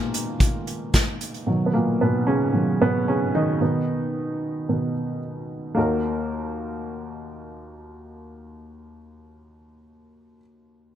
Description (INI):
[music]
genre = piano-driven pop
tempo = 112 BPM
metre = 4/4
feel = straight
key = Eb minor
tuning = A4 = 438 Hz
[part]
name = warm upright piano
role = accompaniment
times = 0.0-10.9 s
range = Eb2 to Bb4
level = -22 LUFS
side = right 1 dB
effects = none
[part]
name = unplugged drum kit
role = drums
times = 0.1-1.5 s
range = hi-hat, kick drum, snare drum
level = -21 LUFS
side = equal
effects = none
[sound]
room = moderate plate reverb, RT60 2.0 s, studio ambience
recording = none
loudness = -21 LUFS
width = side -10 dB against mid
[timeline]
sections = 0.0-5.8 A section; 5.8-10.1 B section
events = upright piano solo 0.0-5.8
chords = 0.0 Abm; 1.5 B; 5.8 Ebm